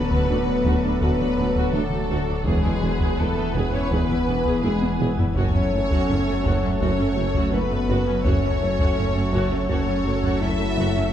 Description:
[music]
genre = cinematic, hybrid orchestral and electronic film score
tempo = 83 BPM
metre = 4/4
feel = straight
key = F# minor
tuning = A4 = 441 Hz
[part]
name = rich symphonic violin section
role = melody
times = 0.0-11.1 s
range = G#4 to E5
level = -32 LUFS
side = left 3 dB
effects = none
[part]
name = rich symphonic violin section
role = second line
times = 0.0-11.1 s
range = G#4 to E5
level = -32 LUFS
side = left 2 dB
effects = none
[part]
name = rich symphonic viola section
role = accompaniment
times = 0.0-11.1 s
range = A3 to B4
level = -32 LUFS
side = right 2 dB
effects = none
[part]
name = clear trombone section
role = sustained chords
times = 0.0-11.1 s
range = E3 to B3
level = -33 LUFS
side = right 3 dB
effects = none
[part]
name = dark French horn section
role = sustained chords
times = 0.0-11.1 s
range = G#3 to E4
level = -26 LUFS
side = left 2 dB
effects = none
[part]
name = soft additive organ-like pad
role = sustained chords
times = 0.0-11.1 s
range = E3 to G#5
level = -32 LUFS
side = equal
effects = ensemble chorus, built-in reverb
[part]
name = harp-like synth pluck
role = arpeggios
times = 0.0-11.1 s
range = D3 to F#4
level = -32 LUFS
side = left 1 dB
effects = none
[part]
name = sub bass with octave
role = bass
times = 0.0-11.1 s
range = D1 to F#1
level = -30 LUFS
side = equal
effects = none
[part]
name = rich symphonic cello section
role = bass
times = 0.1-11.0 s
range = D2 to F#2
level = -30 LUFS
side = right 2 dB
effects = none
[part]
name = taiko ensemble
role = drums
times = 0.1-10.9 s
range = none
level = -26 LUFS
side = equal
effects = none
[part]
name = rich symphonic double bass section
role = bass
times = 0.3-10.8 s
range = E1 to D2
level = -30 LUFS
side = right 2 dB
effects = none
[part]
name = warm tuba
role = bass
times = 0.3-10.8 s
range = E1 to D2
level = -32 LUFS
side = right 3 dB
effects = none
[sound]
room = moderate scoring stage reverb, RT60 2.0 s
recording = dark, warm production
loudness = -19 LUFS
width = side -10 dB against mid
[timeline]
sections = 0.0-11.1 A section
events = drum fill 4.6-5.4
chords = 0.0 D; 2.5 E; 5.4 F#m

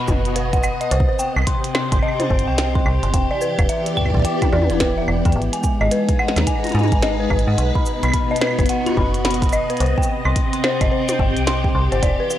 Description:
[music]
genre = IDM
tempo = 108 BPM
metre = 4/4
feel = swing 62% on 16ths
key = unclear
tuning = A4 = 440 Hz
[part]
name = soft string machine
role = sustained chords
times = 0.0-12.4 s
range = B2 to Bb5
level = -23 LUFS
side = equal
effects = phaser, ensemble chorus, sidechain pumping
[part]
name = dark detuned synth bell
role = arpeggios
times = 0.0-12.4 s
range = B4 to D#6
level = -23 LUFS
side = left 1 dB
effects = chorus, tape echo
[part]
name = metallic FM bass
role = bass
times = 0.1-12.2 s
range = E1 to Ab2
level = -21 LUFS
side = equal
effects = none
[part]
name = electronic kick drum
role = drums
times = 0.1-12.2 s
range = none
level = -21 LUFS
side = equal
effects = none
[part]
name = glitchy drum kit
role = drums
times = 0.1-12.4 s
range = claves, hi-hat, shaker, snare drum, toms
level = -24 LUFS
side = equal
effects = none
[sound]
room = little or no reverb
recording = dry, gritty hardware recording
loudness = -16 LUFS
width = side -12 dB against mid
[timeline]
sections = 0.0-12.4 A section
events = none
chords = 0.0 B; 0.9 Cm; 3.1 Em7; 5.4 Abm7; 7.6 B; 9.8 Cm

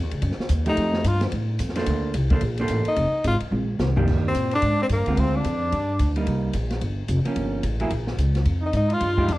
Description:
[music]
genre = jazz, small-group swing and bop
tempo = 218 BPM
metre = 4/4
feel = swing 60% on 8ths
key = Bb major, Eb major from 4.1 s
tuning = A4 = 439 Hz
[part]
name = upright bass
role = bass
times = 0.0-9.4 s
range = F1 to Bb2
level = -24 LUFS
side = equal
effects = none
[part]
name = open jazz drum kit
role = drums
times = 0.1-9.4 s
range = crash cymbal, hi-hat, kick drum, ride cymbal, snare drum, toms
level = -29 LUFS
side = equal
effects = none
[part]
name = clear tenor saxophone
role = melody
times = 0.7-6.2, 8.7-9.4 s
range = Bb3 to F4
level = -24 LUFS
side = left 2 dB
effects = none
[part]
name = vintage hollow-body jazz guitar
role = accompaniment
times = 0.7-9.3 s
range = D3 to C5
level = -26 LUFS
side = right 2 dB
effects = none
[part]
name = brilliant trombone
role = second line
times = 4.3-6.2, 8.6-9.4 s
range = Bb3 to F4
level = -30 LUFS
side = right 4 dB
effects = none
[sound]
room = light reverb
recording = dark, warm production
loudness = -20 LUFS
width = side -18 dB against mid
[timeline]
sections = 0.0-4.1 A section; 4.1-9.4 B section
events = tenor saxophone solo 0.0-4.1; drum fill 3.5-4.1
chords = 0.0 Ebmadd9; 0.8 F9; 1.9 Bbmaj9; 3.0 Fm7; 3.5 Bb69; 4.1 Ebmaj7; 5.2 Dm7b5; 5.7 G5; 6.3 Cm7; 7.4 Gm7b5; 7.9 Bbm; 8.5 Fm9

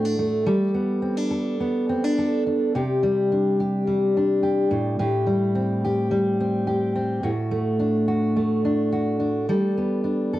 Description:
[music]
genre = pop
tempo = 107 BPM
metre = 4/4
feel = straight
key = G major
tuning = A4 = 441 Hz
[part]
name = fingerpicked steel-string acoustic guitar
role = solo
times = 0.0-10.4 s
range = A2 to A4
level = -20 LUFS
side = equal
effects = cassette tape
[sound]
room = wet studio reverb, RT60 0.5 s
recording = home recording on cassette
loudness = -20 LUFS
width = side -15 dB against mid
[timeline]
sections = 0.5-10.4 A section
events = none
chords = 0.5 Gadd9; 2.7 Csus2; 4.7 Am7; 7.2 D/A; 9.5 Gadd9

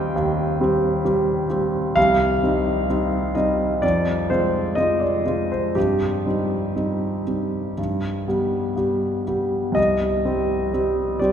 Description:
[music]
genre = classical, romantic character piece for solo piano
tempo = 59-69 BPM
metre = 4/4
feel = rubato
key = C minor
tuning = A4 = 437 Hz
[part]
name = warm concert grand piano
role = solo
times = 0.0-11.3 s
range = C2 to G5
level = -19 LUFS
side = equal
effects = none
[sound]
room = wet cathedral reverb, RT60 6.7 s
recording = recorded in a church or concert hall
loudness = -19 LUFS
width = side -8 dB against mid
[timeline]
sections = 0.0-11.3 A section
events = none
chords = 0.0 Cm/Eb; 2.0 Cm; 3.8 Fm; 5.8 Cm/G; 7.8 G; 9.8 Cm

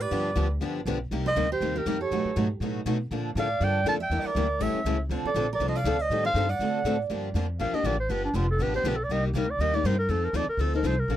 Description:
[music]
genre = acoustic string swing (jazz manouche)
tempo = 241 BPM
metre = 4/4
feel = swing 56% on 8ths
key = G minor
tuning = A4 = 435 Hz
[part]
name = breathy clarinet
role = melody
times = 0.0-11.2 s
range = D4 to A5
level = -28 LUFS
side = right 1 dB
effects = none
[part]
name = picked steel-string acoustic guitar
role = second line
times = 0.0-7.0 s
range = G4 to F5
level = -34 LUFS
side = right 8 dB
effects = none
[part]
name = upright bass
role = bass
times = 0.0-11.2 s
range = F1 to D3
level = -29 LUFS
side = equal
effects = none
[part]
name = picked steel-string acoustic guitar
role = accompaniment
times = 0.1-11.2 s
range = B2 to A4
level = -31 LUFS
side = left 8 dB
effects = none
[part]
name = picked steel-string acoustic guitar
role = accompaniment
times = 0.1-11.2 s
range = B2 to B4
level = -34 LUFS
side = right 8 dB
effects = none
[sound]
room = little or no reverb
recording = dry, close 1970s-style studio recording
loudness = -24 LUFS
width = side -12 dB against mid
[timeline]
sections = 0.0-7.1 A section; 7.1-11.2 B section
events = clarinet solo 7.1-11.2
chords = 0.1 G7; 1.1 Cm7; 2.1 B9; 3.1 Bbmaj7; 4.1 Em7b5; 4.6 A7; 5.1 Dm7; 6.1 Am7b5; 6.6 D7; 7.1 Gm9; 8.1 G7; 9.1 Cm7; 10.1 F7

